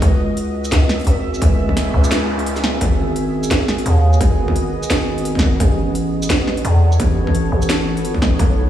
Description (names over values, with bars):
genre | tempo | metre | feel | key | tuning
half-time drum and bass | 172 BPM | 4/4 | swing 57% on 16ths, half-time | unclear | A4 = 440 Hz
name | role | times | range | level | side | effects
deep dark ambient pad | sustained chords | 0.0-8.7 s | B3 to E5 | -24 LUFS | right 1 dB | chorus, built-in reverb, sidechain pumping
growling 808-style bass | bass | 0.0-8.7 s | G#1 to E2 | -17 LUFS | equal | none
drum and bass drum kit | drums | 0.0-8.5 s | hi-hat, shaker, snare drum | -22 LUFS | right 1 dB | none
electronic kick drum | drums | 0.0-8.5 s | none | -17 LUFS | equal | distortion, overdrive
noise sweep | sound effects | 1.6-2.8 s | none | -30 LUFS | right 4 dB | none
room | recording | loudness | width
little or no reverb | played on a big sound system in a bare room, stone room reverb, small room ambience | -14 LUFS | side -11 dB against mid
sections
0.0-8.7 A section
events
noise sweep 1.6-2.8; break 2.5-2.8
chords
0.0 C#m; 2.8 G#m; 5.6 Aadd9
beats
| 0.02 0.37 0.72 1.07 | 1.42 1.76 2.11 2.46 | 2.81 3.16 3.51 3.86 | 4.21 4.56 4.91 5.25 | 5.60 5.95 6.30 6.65 | 7.00 7.35 7.70 8.04 | 8.39